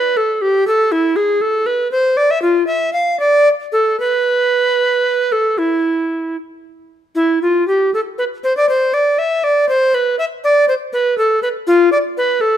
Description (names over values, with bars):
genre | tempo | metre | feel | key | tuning
classical, baroque-style fantasia for unaccompanied recorder | 78 BPM (dotted quarters) | 12/8 | uneven beats, rubato | A minor | A4 = 439 Hz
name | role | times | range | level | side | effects
bright bass recorder | solo | 0.0-12.6 s | E4 to F5 | -13 LUFS | equal | none
room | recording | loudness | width
light reverb | minimal, uncompressed stereo recording | -13 LUFS | side -10 dB against mid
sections
0.0-12.6 A section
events
none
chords
none